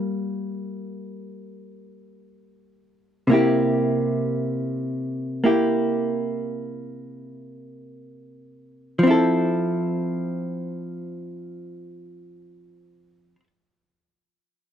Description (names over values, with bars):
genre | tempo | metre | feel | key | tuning
jazz | free time | none | none | F major | A4 = 438 Hz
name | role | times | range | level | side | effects
vintage hollow-body jazz guitar | accompaniment | 0.0-13.5 s | C3 to A4 | -22 LUFS | equal | none
room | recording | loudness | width
small room ambience | dry, close 1970s-style studio recording | -21 LUFS | side -9 dB against mid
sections
0.0-9.0 A section; 9.0-14.7 B section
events
slowing down 0.0-9.0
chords
0.0 Gm9; 3.3 C7; 9.0 Fmaj7